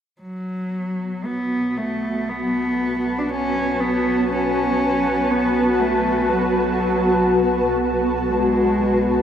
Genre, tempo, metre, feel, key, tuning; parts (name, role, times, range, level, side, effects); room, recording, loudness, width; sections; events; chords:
ambient; 60 BPM; 4/4; straight; A4 = 440 Hz
dark cello; melody; 0.2-9.2 s; F#3 to D4; -22 LUFS; equal; tape echo
granular cloud pad; sustained chords; 1.1-9.2 s; B3 to A5; -20 LUFS; equal; built-in reverb
warm sub bass; bass; 0.2-9.2 s; B1; -36 LUFS; equal
wet huge ambient reverb, RT60 8.0 s; dreamy mix soaked in reverb; -18 LUFS; side -9 dB against mid
0.2-9.2 A section
fade-in on sub bass 0.2-9.2; filter sweep on ambient pad 0.2-9.2
0.2 B5